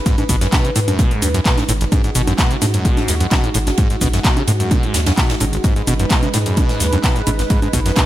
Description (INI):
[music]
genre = acid house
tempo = 129 BPM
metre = 4/4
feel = straight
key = G# minor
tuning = A4 = 440 Hz
[part]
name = warm analog pad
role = sustained chords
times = 0.0-8.1 s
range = G#3 to B4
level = -24 LUFS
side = right 1 dB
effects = chorus, vintage 12-bit sampler grit, sidechain pumping
[part]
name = liquid acid bass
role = riff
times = 0.1-8.1 s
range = G#1 to C#3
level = -20 LUFS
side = equal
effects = chorus, overdrive, digital delay
[part]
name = big rock drum kit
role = drums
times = 0.1-8.1 s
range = ride cymbal, snare drum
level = -29 LUFS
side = right 1 dB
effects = sidechain pumping on cymbals, high-pass filter on cymbals, high-pass filter on snare, high-pass filter on room
[part]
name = booming analog drum machine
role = drums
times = 0.1-8.1 s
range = congas, handclaps, hi-hat, shaker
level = -22 LUFS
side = right 1 dB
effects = none
[part]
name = electronic kick drum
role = drums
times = 0.1-8.1 s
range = none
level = -16 LUFS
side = equal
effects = none
[part]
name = round analog bass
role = bass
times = 0.3-7.9 s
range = G#1 to G#2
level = -20 LUFS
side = equal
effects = sidechain pumping
[sound]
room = little or no reverb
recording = none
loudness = -14 LUFS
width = side -14 dB against mid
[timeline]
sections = 0.0-8.1 A section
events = none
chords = 0.0 G#m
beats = | 0.06 0.53 0.99 1.46 | 1.92 2.38 2.85 3.32 | 3.78 4.25 4.71 5.18 | 5.64 6.11 6.57 7.04 | 7.50 7.97